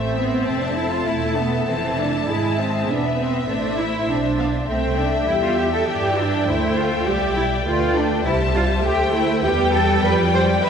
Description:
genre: quick classical-period movement for string orchestra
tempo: 100 BPM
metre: 4/4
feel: straight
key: A minor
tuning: A4 = 440 Hz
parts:
  - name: rich symphonic violin section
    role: melody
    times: 0.0-10.7 s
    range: D5 to A5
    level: -28 LUFS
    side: left 5 dB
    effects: none
  - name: warm symphonic violin section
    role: second line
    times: 0.0-10.7 s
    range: G#4 to G5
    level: -25 LUFS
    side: left 4 dB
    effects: none
  - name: rich chamber viola section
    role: accompaniment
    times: 0.0-10.7 s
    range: E3 to C4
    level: -25 LUFS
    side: left 1 dB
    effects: none
  - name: rich symphonic cello section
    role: bass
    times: 0.0-10.7 s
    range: A3 to C5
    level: -22 LUFS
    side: right 2 dB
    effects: none
  - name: warm symphonic double bass section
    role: bass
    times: 0.0-10.7 s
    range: E1 to G2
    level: -24 LUFS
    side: right 3 dB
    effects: none
room: wet scoring stage reverb, RT60 1.7 s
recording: recorded in a church or concert hall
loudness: -18 LUFS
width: side -7 dB against mid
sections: 0.0-10.7 A section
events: none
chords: 0.0 Am; 2.3 E7/G#; 3.5 Am; 4.7 C; 7.1 G7/B; 8.3 C; 9.4 Em

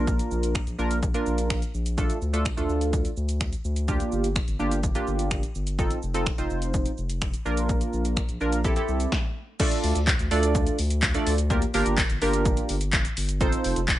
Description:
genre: dance-pop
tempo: 126 BPM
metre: 4/4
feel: straight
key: D minor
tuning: A4 = 440 Hz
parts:
  - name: funky polysynth comp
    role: accompaniment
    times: 0.0-13.8 s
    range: A3 to D5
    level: -27 LUFS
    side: right 2 dB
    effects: chorus, sidechain pumping
  - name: saturated sub bass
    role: bass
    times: 0.0-13.9 s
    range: F1 to D2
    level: -27 LUFS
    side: equal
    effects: sidechain pumping
  - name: punchy analog drum machine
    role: drums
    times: 0.1-14.0 s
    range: crash cymbal, finger snaps, handclaps, hi-hat, kick drum, shaker, snare drum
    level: -26 LUFS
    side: equal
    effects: none
room: little or no reverb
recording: nothing above 10.5 kHz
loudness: -23 LUFS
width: side -14 dB against mid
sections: 0.0-9.6 A section; 9.6-14.0 B section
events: stop 9.1-9.6; drop 9.6-14.0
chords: 0.0 Bb; 2.0 Dm; 3.9 Gm7; 5.8 F7; 7.5 Bb; 8.6 C6; 9.6 Dm; 11.5 Gm7; 13.4 F7

